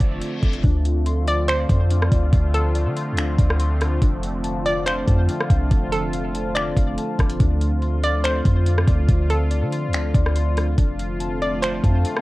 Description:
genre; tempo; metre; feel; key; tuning
hip hop, atmospheric cloud-rap; 142 BPM; 4/4; half-time; unclear; A4 = 439 Hz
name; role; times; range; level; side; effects
hollow square pluck; melody; 0.0-12.2 s; A4 to D5; -26 LUFS; equal; chorus, cassette tape, analog delay
sweeping resonant pad; sustained chords; 0.0-12.2 s; D3 to F4; -27 LUFS; equal; chorus
clean 808-style bass; bass; 0.0-12.0 s; F1 to D3; -21 LUFS; equal; none
smooth R&B drum kit; drums; 0.0-12.2 s; finger snaps, hi-hat, kick drum, rim click; -20 LUFS; equal; cassette tape
reverse cymbal; sound effects; 0.0-0.6 s; none; -35 LUFS; left 4 dB; none
muted felt-like synth keys; arpeggios; 0.6-12.2 s; D4 to C6; -32 LUFS; left 7 dB; chorus, analog delay
room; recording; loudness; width
little or no reverb; home recording on cassette; -18 LUFS; side -19 dB against mid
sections
0.6-12.2 A section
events
reverse cymbal 0.0-0.6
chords
0.0 F6; 0.6 Dm7; 4.0 F6; 7.4 Dm7; 10.8 F6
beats
0.22 | 0.64 1.06 1.48 1.91 | 2.33 2.75 3.17 3.60 | 4.02 4.44 4.86 5.29 | 5.71 6.13 6.55 6.98 | 7.40 7.82 8.24 8.67 | 9.09 9.51 9.93 10.36 | 10.78 11.20 11.62 12.05

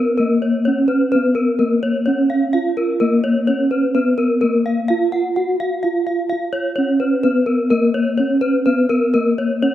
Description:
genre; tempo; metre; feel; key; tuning
gamelan; 128 BPM; 4/4; straight; Bb pelog; A4 = 442 Hz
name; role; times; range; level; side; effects
gamelan-type bronze metallophone; melody; 0.0-9.7 s; Bb3 to Gb4-20c; -16 LUFS; equal; none
gamelan-type bronze metallophone; arpeggios; 0.0-9.7 s; Bb4 to Gb5-20c; -20 LUFS; left 2 dB; none
room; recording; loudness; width
moderate lush hall reverb, RT60 2.5 s; rough home demo mix; -15 LUFS; side -12 dB against mid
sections
0.0-9.7 A section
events
none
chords
none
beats
0.19 | 0.66 1.13 1.60 2.07 | 2.54 3.01 3.48 3.95 | 4.42 4.89 5.36 5.83 | 6.30 6.77 7.24 7.71 | 8.18 8.65 9.13 9.62

